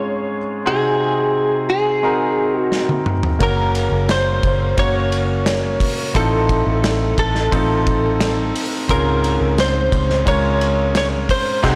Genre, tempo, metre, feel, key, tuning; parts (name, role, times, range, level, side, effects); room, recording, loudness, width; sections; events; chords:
piano-driven pop; 88 BPM; 4/4; straight; A4 = 442 Hz
direct-recorded clean electric guitar; melody; 0.0-11.8 s; Ab4 to Db5; -22 LUFS; equal; analog chorus
warm concert grand piano; accompaniment; 0.0-11.8 s; Ab2 to Bb4; -23 LUFS; equal
loose indie drum kit; drums; 2.7-11.8 s; crash cymbal, hi-hat, kick drum, ride cymbal, snare drum, toms; -24 LUFS; equal
vintage muted fingered electric bass; bass; 3.4-11.8 s; Gb1 to Db2; -23 LUFS; equal
light reverb, small room ambience; blown-out, overdriven recording, overdrive; -18 LUFS; mono
0.0-11.8 A section
drum fill 2.7-3.4
0.0 Dbmaj7; 0.7 Ab7/C; 3.4 Gb; 6.1 F7/A; 8.9 Dbmaj7